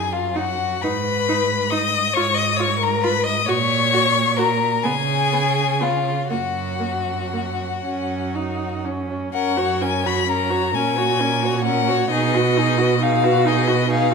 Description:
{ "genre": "classical, slow romantic movement for string quartet", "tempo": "39-46 BPM (dotted quarters)", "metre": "6/8", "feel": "rubato", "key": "F# major", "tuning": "A4 = 440 Hz", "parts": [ { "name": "warm violin", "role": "melody", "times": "0.0-14.1 s", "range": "D#5 to D#6", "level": "-21 LUFS", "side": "left 10 dB", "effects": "none" }, { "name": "rich violin", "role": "second line", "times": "0.0-14.1 s", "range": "E#4 to D#5", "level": "-25 LUFS", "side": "left 3 dB", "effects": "none" }, { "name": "rich cello", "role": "bass", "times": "0.0-14.1 s", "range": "F#2 to C#3", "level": "-24 LUFS", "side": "right 7 dB", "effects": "none" }, { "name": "rich viola", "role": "accompaniment", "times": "0.3-14.1 s", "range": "A#3 to F#4", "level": "-24 LUFS", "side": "right 3 dB", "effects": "none" } ], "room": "wet recital hall reverb, RT60 1.4 s", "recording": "none", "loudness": "-18 LUFS", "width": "side -5 dB against mid", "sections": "0.0-9.3 A section; 9.3-14.1 A section", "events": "none", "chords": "0.0 N.C.; 0.8 G#m; 2.2 C#13/G#; 3.5 F#/A#; 4.8 C#5; 6.3 F#5; 9.3 F#; 10.7 F#/A#; 12.1 G#m7/B", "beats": "| 0.83 2.15 | 3.48 4.85 | 6.31 7.85 | 9.34 10.74 | 12.10 13.46" }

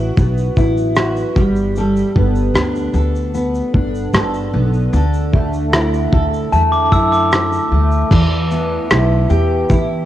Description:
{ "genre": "acoustic pop", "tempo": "76 BPM", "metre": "4/4", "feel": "straight", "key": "E minor", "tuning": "A4 = 440 Hz", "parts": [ { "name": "fingerpicked steel-string acoustic guitar", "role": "accompaniment", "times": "0.0-10.1 s", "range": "D3 to A4", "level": "-18 LUFS", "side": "equal", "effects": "double-tracked left and right, cassette tape" }, { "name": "upright bass", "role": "bass", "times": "0.0-10.0 s", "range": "G1 to E3", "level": "-18 LUFS", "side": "equal", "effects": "none" }, { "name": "cloth-damped thuddy drum kit", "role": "drums", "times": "0.2-9.9 s", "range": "crash cymbal, kick drum, rim click, shaker", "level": "-17 LUFS", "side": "equal", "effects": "none" }, { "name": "glockenspiel with soft plastic mallets", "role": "second line", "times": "6.5-8.1 s", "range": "A5 to E6", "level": "-18 LUFS", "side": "left 2 dB", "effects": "cassette tape" } ], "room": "light reverb, studio reverb", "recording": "home recording on cassette", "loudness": "-13 LUFS", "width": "side -13 dB against mid", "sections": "0.0-8.1 A section; 8.1-10.1 B section", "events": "none", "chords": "0.0 Bsus4; 1.4 Gadd9; 4.9 Dsus2; 8.1 Em", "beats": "0.17 0.96 | 1.76 2.55 3.35 4.14 | 4.93 5.73 6.52 7.32 | 8.11 8.90 9.70" }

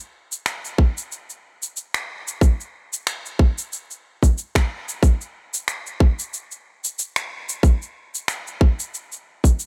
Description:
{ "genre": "downtempo", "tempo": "92 BPM", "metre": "4/4", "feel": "swing 55% on 16ths", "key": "none", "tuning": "none", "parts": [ { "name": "electronic shaker and finger snaps", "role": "drums", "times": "0.0-9.7 s", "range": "none", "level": "-28 LUFS", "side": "equal", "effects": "overdrive" }, { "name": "electronic kick drum", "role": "drums", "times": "0.8-9.6 s", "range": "none", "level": "-17 LUFS", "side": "equal", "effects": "overdrive" } ], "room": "digital ambience", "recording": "none", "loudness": "-23 LUFS", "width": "mono", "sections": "0.0-9.7 A section", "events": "none", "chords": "none", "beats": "0.46 1.11 1.76 | 2.41 3.07 3.72 4.37 | 5.02 5.67 6.33 6.98 | 7.63 8.28 8.94 9.59" }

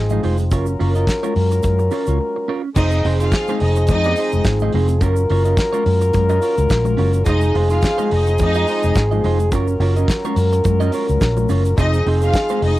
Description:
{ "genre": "disco", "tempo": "106 BPM", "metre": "4/4", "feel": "swing 56% on 16ths", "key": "unclear", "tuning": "A4 = 440 Hz", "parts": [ { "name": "clear French horn section", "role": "sustained chords", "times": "0.0-12.8 s", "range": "F3 to Bb4", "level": "-20 LUFS", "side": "left 1 dB", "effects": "cassette tape" }, { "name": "vintage muted fingered electric bass", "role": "bass", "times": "0.0-12.8 s", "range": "F1 to Gb2", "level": "-17 LUFS", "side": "equal", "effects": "none" }, { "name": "electric guitar at the edge of break-up", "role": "accompaniment", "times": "0.1-12.7 s", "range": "Ab3 to Eb5", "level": "-25 LUFS", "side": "right 7 dB", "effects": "cassette tape" }, { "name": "congas", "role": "percussion", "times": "0.1-12.8 s", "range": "none", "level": "-28 LUFS", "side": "left 9 dB", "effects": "none" }, { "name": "egg shaker", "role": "percussion", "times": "0.1-12.6 s", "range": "none", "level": "-42 LUFS", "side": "right 10 dB", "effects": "none" }, { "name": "damped 70s drum kit", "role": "drums", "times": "0.2-12.8 s", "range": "crash cymbal, hi-hat, kick drum, snare drum", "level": "-22 LUFS", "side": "equal", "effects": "none" }, { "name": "clear studio string section", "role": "second line", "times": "2.8-12.8 s", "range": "Eb4 to F5", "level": "-23 LUFS", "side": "equal", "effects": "cassette tape" } ], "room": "light reverb", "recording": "home recording on cassette", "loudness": "-15 LUFS", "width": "side -16 dB against mid", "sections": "0.0-2.8 A section; 2.8-12.8 A section", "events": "break 2.2-2.8", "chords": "0.0 Fm7; 0.5 Gbmaj7; 2.8 Fm7; 5.0 Gbmaj7; 7.3 Fm7; 9.5 Gbmaj7; 11.8 Fm7", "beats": "| 0.51 1.07 1.64 2.20 | 2.77 3.33 3.89 4.45 | 5.02 5.58 6.14 6.71 | 7.27 7.83 8.40 8.96 | 9.52 10.09 10.65 11.21 | 11.78 12.34" }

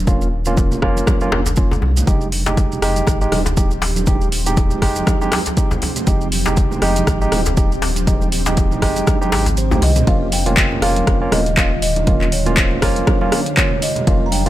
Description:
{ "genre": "afro house", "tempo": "120 BPM", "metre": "4/4", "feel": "swing 56% on 16ths", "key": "F minor", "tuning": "A4 = 441 Hz", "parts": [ { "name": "round analog bass", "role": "bass", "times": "0.0-14.5 s", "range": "Eb1 to C2", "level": "-21 LUFS", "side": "equal", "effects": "sidechain pumping" }, { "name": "barky tine electric piano", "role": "stabs", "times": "0.1-14.5 s", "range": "Ab3 to G4", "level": "-22 LUFS", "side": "right 2 dB", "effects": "overdrive, sidechain pumping, ping-pong delay" }, { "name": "electronic kick drum", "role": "drums", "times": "0.1-14.2 s", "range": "none", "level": "-17 LUFS", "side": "equal", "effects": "overdrive, studio reverb" }, { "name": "congas", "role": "percussion", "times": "0.1-14.5 s", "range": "none", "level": "-26 LUFS", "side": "right 3 dB", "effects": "none" }, { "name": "maracas", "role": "percussion", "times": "0.1-10.0 s", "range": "none", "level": "-30 LUFS", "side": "right 5 dB", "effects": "none" }, { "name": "djembe", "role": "percussion", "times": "0.6-9.9 s", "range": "none", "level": "-24 LUFS", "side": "left 3 dB", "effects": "none" }, { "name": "deep house drum kit", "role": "drums", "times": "0.8-14.5 s", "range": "handclaps, hi-hat, rim click, toms", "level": "-21 LUFS", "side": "equal", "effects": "overdrive, studio reverb" }, { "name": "ethereal airy pad", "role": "sustained chords", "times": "2.8-14.5 s", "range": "D3 to G4", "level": "-26 LUFS", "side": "right 1 dB", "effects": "ensemble chorus, built-in reverb, sidechain pumping" }, { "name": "buzzing kalimba", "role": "melody", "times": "9.6-14.5 s", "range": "C5 to Bb5", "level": "-23 LUFS", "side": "equal", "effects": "vintage 12-bit sampler grit, digital delay" } ], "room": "small room ambience", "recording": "none", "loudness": "-14 LUFS", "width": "side -14 dB against mid", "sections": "0.0-10.1 A section; 10.1-14.5 B section", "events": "kick drops out 9.6-10.1; drum fill 9.7-10.1; drop 10.1-14.5", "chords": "0.0 Db69/Eb; 2.1 Fm7; 10.1 Gm7b5", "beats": "| 0.07 0.57 1.07 1.57 | 2.07 2.57 3.07 3.57 | 4.07 4.57 5.07 5.57 | 6.07 6.57 7.07 7.57 | 8.07 8.57 9.07 9.57 | 10.07 10.57 11.07 11.57 | 12.07 12.57 13.07 13.57 | 14.07" }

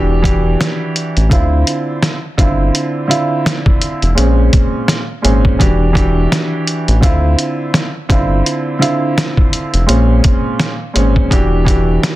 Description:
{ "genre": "hip hop, boom-bap hip-hop", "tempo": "84 BPM", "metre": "4/4", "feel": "swing 58% on 16ths", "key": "unclear", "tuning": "A4 = 437 Hz", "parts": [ { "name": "dark baby grand piano", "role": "accompaniment", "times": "0.0-12.2 s", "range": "Bb2 to G4", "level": "-16 LUFS", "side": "right 1 dB", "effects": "cassette tape, high-pass filter, low-pass filter" }, { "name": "round analog bass", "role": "bass", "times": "0.0-12.0 s", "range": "E1 to D2", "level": "-13 LUFS", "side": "equal", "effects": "none" }, { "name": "trip hop sampler-style drum kit", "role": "drums", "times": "0.2-12.2 s", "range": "hi-hat, kick drum, snare drum", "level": "-14 LUFS", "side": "equal", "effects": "none" } ], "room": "digital ambience", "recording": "dense, heavily limited modern master", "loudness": "-11 LUFS", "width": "side -16 dB against mid", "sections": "0.0-12.2 A section", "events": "none", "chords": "0.0 Em9; 1.3 Dm9; 4.2 Bbm9; 5.6 Em9; 7.0 Dm9; 9.9 Bbm9; 11.3 Em9", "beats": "0.60 | 1.31 2.03 2.74 3.46 | 4.17 4.88 5.60 6.31 | 7.03 7.74 8.46 9.17 | 9.88 10.60 11.31 12.03" }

